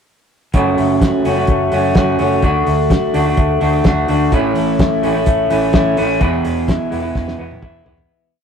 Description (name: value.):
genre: jangly indie pop.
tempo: 127 BPM.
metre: 4/4.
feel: straight.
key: unclear.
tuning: A4 = 442 Hz.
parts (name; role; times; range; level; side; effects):
electric guitar through a small old amp; accompaniment; 0.5-8.4 s; E2 to F#4; -16 LUFS; right 1 dB; none.
electric guitar through a small old amp; arpeggios; 0.5-8.4 s; E2 to F#4; -20 LUFS; left 5 dB; none.
vintage muted fingered electric bass; bass; 0.5-8.1 s; E1 to D2; -22 LUFS; right 1 dB; none.
cloth-damped thuddy drum kit; drums; 0.5-8.1 s; hi-hat, kick drum, snare drum, toms; -17 LUFS; equal; none.
room: moderate stone room reverb, RT60 1.1 s.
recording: rough rehearsal-room recording.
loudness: -13 LUFS.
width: side -7 dB against mid.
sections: 0.5-8.1 verse.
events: fade-out 6.2-8.1; drum fill 7.2-8.1.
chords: 0.5 F#m; 2.4 D; 4.3 A; 6.2 E.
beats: | 0.54 1.01 1.49 1.96 | 2.43 2.90 3.38 3.85 | 4.32 4.79 5.27 5.74 | 6.21 6.68 7.15 7.62.